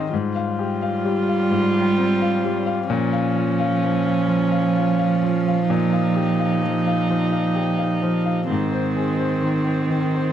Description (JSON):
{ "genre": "neoclassical piano and strings", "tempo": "86 BPM", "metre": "4/4", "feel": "rubato", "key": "F minor", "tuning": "A4 = 439 Hz", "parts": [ { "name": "warm cello", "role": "second line", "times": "0.0-10.3 s", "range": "Eb3 to G3", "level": "-22 LUFS", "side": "right 5 dB", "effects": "none" }, { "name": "clear baby grand piano", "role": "accompaniment", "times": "0.0-10.3 s", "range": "Ab2 to F5", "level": "-23 LUFS", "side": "left 7 dB", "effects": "none" }, { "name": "warm viola", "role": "accompaniment", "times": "0.0-10.3 s", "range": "C4 to F4", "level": "-24 LUFS", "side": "right 2 dB", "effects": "none" } ], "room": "light reverb", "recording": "dry, close 1970s-style studio recording", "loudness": "-18 LUFS", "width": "side -10 dB against mid", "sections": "0.0-10.3 A section", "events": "none", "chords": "0.1 Fmadd9/Ab; 2.9 Bbm; 5.7 Ebadd9/Bb; 8.5 Ab" }